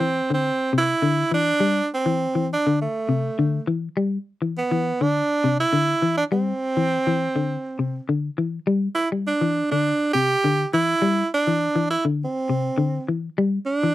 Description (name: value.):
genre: afrobeat.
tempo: 102 BPM.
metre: 4/4.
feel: straight.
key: unclear.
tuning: A4 = 442 Hz.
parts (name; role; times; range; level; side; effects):
bright tenor saxophone; melody; 0.0-13.9 s; A3 to G4; -22 LUFS; right 2 dB; none.
clean electric guitar; arpeggios; 0.0-13.9 s; C3 to G3; -22 LUFS; left 3 dB; none.
room: light reverb.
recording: dry, close 1970s-style studio recording.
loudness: -20 LUFS.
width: side -15 dB against mid.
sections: 0.0-13.9 A section.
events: none.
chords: 0.0 Cadd9.